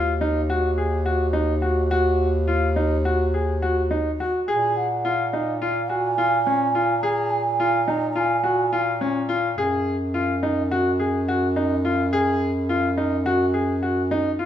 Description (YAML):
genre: contemporary instrumental, chamber music in an uneven meter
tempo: 212 BPM (eighths)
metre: 9/8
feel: straight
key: unclear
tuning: A4 = 436 Hz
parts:
  - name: clear grand piano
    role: arpeggios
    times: 0.0-14.5 s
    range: Db4 to Ab4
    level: -22 LUFS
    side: left 1 dB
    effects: none
  - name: clear bass clarinet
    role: bass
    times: 0.0-14.5 s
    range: Eb2 to Bb2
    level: -24 LUFS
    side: equal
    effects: none
  - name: mellow hollow baroque flute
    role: melody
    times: 4.5-8.8 s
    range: F5 to Bb5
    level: -23 LUFS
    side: right 5 dB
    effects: none
room: moderate recital hall reverb, RT60 1.5 s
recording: minimal, uncompressed stereo recording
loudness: -20 LUFS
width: side -10 dB against mid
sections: 0.0-14.5 A section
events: none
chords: 0.0 Ebm; 4.5 Bb7(no3); 9.6 Gbsus2